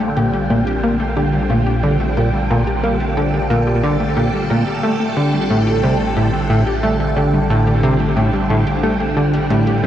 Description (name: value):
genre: ambient, sequencer-driven space music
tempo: 90 BPM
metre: 4/4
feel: straight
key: unclear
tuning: A4 = 440 Hz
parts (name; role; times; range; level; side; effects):
- phased string machine; sustained chords; 0.0-9.9 s; D3 to A4; -21 LUFS; equal; ensemble chorus, phaser
- wide unison pluck; arpeggios; 0.0-9.9 s; F3 to G4; -23 LUFS; left 2 dB; auto-pan, tape echo
- round analog bass; bass; 0.0-9.9 s; A1 to Bb1; -24 LUFS; equal; none
- wind-like tuned noise texture; texture; 0.0-9.9 s; G5; -27 LUFS; right 2 dB; built-in reverb
- plucky analog bass; riff; 0.2-9.9 s; A2 to Bb3; -17 LUFS; equal; wide subtle chorus, vintage 12-bit sampler grit, tape echo
room: wet plate reverb, RT60 3.7 s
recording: worn, warbling old tape, cassette tape, warbly pitch drift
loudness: -14 LUFS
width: side -11 dB against mid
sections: 0.0-9.9 A section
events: none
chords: 0.0 Bb; 4.8 F69/A